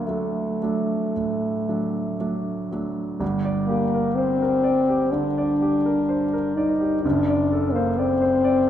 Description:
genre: classical, romantic duo for French horn and grand piano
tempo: 56-65 BPM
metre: 4/4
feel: rubato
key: G minor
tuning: A4 = 439 Hz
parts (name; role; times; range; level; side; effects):
- mellow French horn; melody; 0.0-8.7 s; A3 to Eb4; -21 LUFS; left 1 dB; none
- clear grand piano; accompaniment; 0.0-8.7 s; F#1 to D5; -25 LUFS; right 2 dB; none
room: moderate recital hall reverb, RT60 1.4 s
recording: none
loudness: -20 LUFS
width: side -10 dB against mid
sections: 0.0-3.2 A section; 3.2-8.7 B section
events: none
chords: 0.0 D; 3.2 Gm; 7.0 D7/F#

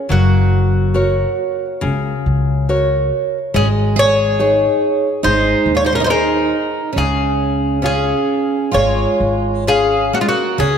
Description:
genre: fado-style ballad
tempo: 69 BPM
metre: 4/4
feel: rubato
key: Db major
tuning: A4 = 440 Hz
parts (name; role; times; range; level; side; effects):
- Irish bouzouki; melody; 0.0-10.8 s; F4 to Db5; -18 LUFS; equal; none
- picked twelve-string acoustic guitar; second line; 0.0-10.8 s; Ab3 to Ab4; -21 LUFS; right 5 dB; none
- nylon-string guitar; accompaniment; 0.1-10.8 s; Db3 to F5; -19 LUFS; left 2 dB; none
- upright bass; bass; 0.1-10.8 s; Gb1 to Eb2; -18 LUFS; equal; none
room: moderate concert hall reverb, RT60 2.1 s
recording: none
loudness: -13 LUFS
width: side -7 dB against mid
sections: 0.0-10.6 A section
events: none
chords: 0.1 Gb; 3.5 Absus4; 5.2 Ab; 7.0 Db

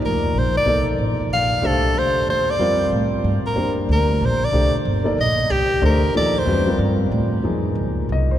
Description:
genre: jazz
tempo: 186 BPM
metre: 3/4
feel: swing 62% on 8ths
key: unclear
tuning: A4 = 441 Hz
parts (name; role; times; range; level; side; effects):
- warm grand piano; accompaniment; 0.0-8.4 s; F3 to Eb5; -23 LUFS; left 2 dB; none
- upright bass; bass; 0.0-8.4 s; G1 to A2; -21 LUFS; equal; none
- bright soprano saxophone; melody; 0.1-6.8 s; G4 to F5; -21 LUFS; equal; none
room: wet cathedral reverb, RT60 5.7 s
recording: recorded in a church or concert hall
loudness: -17 LUFS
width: side -11 dB against mid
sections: 0.0-7.4 A section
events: none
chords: 0.0 C13sus4; 3.6 F13sus4; 7.4 Bbm11

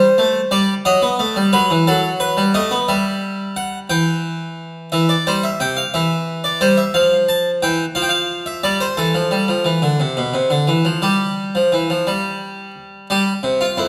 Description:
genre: classical, baroque-style two-part invention for harpsichord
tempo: 59 BPM (dotted quarters)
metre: 12/8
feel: straight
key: E minor, C major from 4.9 s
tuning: A4 = 440 Hz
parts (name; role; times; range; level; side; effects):
- harpsichord; solo; 0.0-13.9 s; F2 to A5; -18 LUFS; equal; none
room: wet recital hall reverb, RT60 1.4 s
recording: none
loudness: -18 LUFS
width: mono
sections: 0.0-4.9 A section; 4.9-13.1 B section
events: none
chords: 0.0 C5; 0.9 B; 2.9 Em/G; 4.9 C; 7.0 N.C.; 9.0 C; 11.0 N.C.; 13.1 C

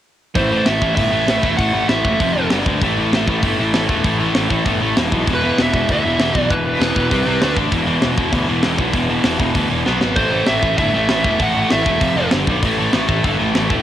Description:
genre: punk rock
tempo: 196 BPM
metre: 4/4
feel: straight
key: unclear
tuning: A4 = 440 Hz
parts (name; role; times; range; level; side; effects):
- high-gain lead guitar; melody; 0.4-2.5, 5.3-7.5, 10.2-12.3 s; B4 to F#5; -20 LUFS; right 2 dB; distortion
- distorted electric guitar; riff; 0.4-13.8 s; E2 to D4; -18 LUFS; equal; distortion
- fuzz picked electric bass; bass; 0.4-13.8 s; E1 to D2; -23 LUFS; equal; overdrive
- tight metal drum kit; drums; 0.4-13.8 s; hi-hat, kick drum, snare drum; -21 LUFS; equal; cassette tape
room: studio reverb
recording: home recording on cassette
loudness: -14 LUFS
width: side -11 dB against mid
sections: 0.4-13.8 A section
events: drum fill 9.9-10.2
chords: 0.4 A5; 2.2 F5; 2.5 G5; 2.8 A5; 5.0 E5; 7.1 C5; 7.4 D5; 7.7 E5; 9.9 B5; 10.2 A5; 12.0 F5; 12.3 G5; 12.6 A5

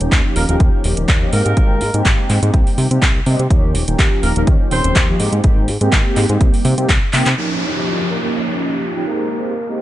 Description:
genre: filtered disco house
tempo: 124 BPM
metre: 4/4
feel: swing 54% on 16ths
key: Eb mixolydian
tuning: A4 = 440 Hz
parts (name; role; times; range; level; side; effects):
- mellow synth brass; accompaniment; 0.0-9.8 s; F3 to G4; -21 LUFS; equal; chorus, phaser, sidechain pumping, low-pass filter
- fat analog bass; bass; 0.0-7.3 s; Eb1 to C3; -17 LUFS; equal; sidechain pumping, low-pass filter
- house drum kit; drums; 0.0-7.4 s; handclaps, hi-hat; -20 LUFS; equal; sidechain pumping on hats, low-pass filter on hats, small room ambience, low-pass filter on snare
- electronic kick drum; drums; 0.1-7.0 s; none; -15 LUFS; equal; small room ambience
- mellow horn section; melody; 0.4-5.1, 8.1-9.8 s; Bb3 to C5; -24 LUFS; equal; sidechain pumping, low-pass filter, tape echo
- downlifter; sound effects; 7.4-9.8 s; none; -23 LUFS; equal; none
room: little or no reverb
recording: nothing above 10.8 kHz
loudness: -13 LUFS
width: side -14 dB against mid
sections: 0.0-7.4 A section; 7.4-9.8 B section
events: filter sweep 0.0-7.4, 7.4-9.8; drum fill 7.1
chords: 0.0 Eb9; 1.3 Abmaj7; 2.5 Cm7; 3.5 Eb9; 5.2 Abmaj7; 6.4 Cm7; 7.4 Eb9; 9.1 Abmaj7

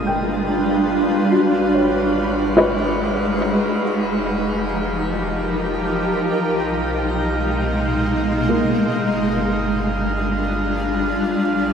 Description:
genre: ambient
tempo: 72 BPM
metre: 3/4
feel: straight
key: unclear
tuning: A4 = 440 Hz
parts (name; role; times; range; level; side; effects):
- shimmering ambient pad; sustained chords; 0.0-11.7 s; B2 to B4; -19 LUFS; equal; chorus, built-in reverb
- warm sub bass; bass; 0.0-11.7 s; F1 to B1; -29 LUFS; equal; tube saturation
- glass harmonica; texture; 0.0-11.7 s; F5 to F6; -29 LUFS; right 3 dB; none
- felt-muted upright piano; arpeggios; 0.1-4.6, 8.5-9.1 s; Bb3 to G5; -23 LUFS; equal; tape echo
room: wet shimmer reverb, RT60 7.5 s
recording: none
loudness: -17 LUFS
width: side -7 dB against mid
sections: 0.0-11.7 A section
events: fade-in on sub bass 0.0-11.7; fade-in on glass harmonica 0.0-11.7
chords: 0.0 G7; 1.3 Abm7; 3.8 F9sus4; 6.4 B6; 8.9 G5

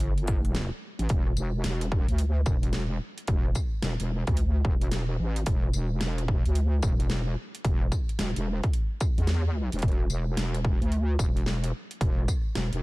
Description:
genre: glitch hop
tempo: 110 BPM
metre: 4/4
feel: swing 64% on 16ths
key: E minor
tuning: A4 = 437 Hz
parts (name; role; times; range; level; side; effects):
- wobble bass; bass; 0.0-12.8 s; E1 to E2; -27 LUFS; equal; chorus, overdrive
- dubstep drum kit; drums; 0.0-12.8 s; hi-hat, rim click, snare drum, tambourine; -36 LUFS; equal; none
- electronic kick drum; drums; 0.3-12.4 s; none; -26 LUFS; equal; none
room: little or no reverb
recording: dark, warm production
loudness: -25 LUFS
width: side -22 dB against mid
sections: 0.0-12.8 A section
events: break 0.6-1.1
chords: none

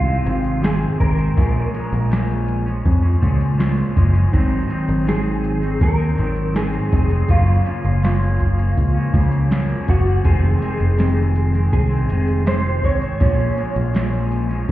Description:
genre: indie pop, bedroom pop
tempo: 81 BPM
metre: 4/4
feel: straight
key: Bb minor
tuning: A4 = 442 Hz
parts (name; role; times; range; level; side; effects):
- electric guitar through a small old amp; melody; 0.0-14.7 s; F4 to Db5; -26 LUFS; right 1 dB; ensemble chorus, slapback echo
- electric guitar at the edge of break-up; accompaniment; 0.0-14.7 s; F2 to Eb4; -23 LUFS; left 2 dB; lush chorus, warbly pitch drift
- picked electric bass; bass; 0.0-14.7 s; F1 to F2; -18 LUFS; equal; none
- soft vintage rhythm box; drums; 0.3-14.7 s; hi-hat, kick drum, snare drum; -19 LUFS; equal; none
room: little or no reverb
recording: heard muffled through a wall, stone room reverb, EQ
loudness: -16 LUFS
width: side -15 dB against mid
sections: 0.0-14.7 A section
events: none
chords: 0.0 Fm7; 1.4 Bbm7; 4.3 Ab7; 7.3 Gbmaj7; 10.2 Fm7; 13.2 Bbm7

